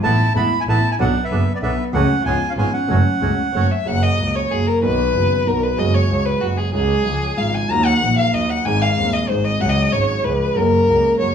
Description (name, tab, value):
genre	tango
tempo	188 BPM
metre	3/4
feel	rubato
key	F# minor, F# major from 3.9 s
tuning	A4 = 440 Hz
part	bandoneon	melody	0.0-3.7 s	D5 to B5	-22 LUFS	right 4 dB	none
part	warm violin	second line	0.0-11.3 s	B3 to A#5	-20 LUFS	left 2 dB	none
part	warm concert grand piano	accompaniment	0.0-11.3 s	D#1 to A4	-22 LUFS	right 1 dB	none
part	bandoneon	stabs	0.0-3.7 s	A3 to A4	-28 LUFS	right 3 dB	none
part	clear double bass	bass	0.0-11.3 s	E1 to D#2	-20 LUFS	right 1 dB	none
room	moderate studio reverb, RT60 0.8 s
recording	band playing live in one room, small room ambience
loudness	-15 LUFS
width	side -8 dB against mid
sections	0.0-3.9 A section; 3.9-11.3 B section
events	violin solo 3.9-11.3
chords	0.0 Asus2; 1.0 Bm7; 1.9 F#m/C#; 2.3 C#7; 2.9 F#m; 3.9 F#; 4.8 B; 5.8 F#sus2; 6.7 C#sus4; 7.0 C#; 7.7 D#m; 8.7 G#; 9.6 C#sus4; 10.2 C#; 10.6 F#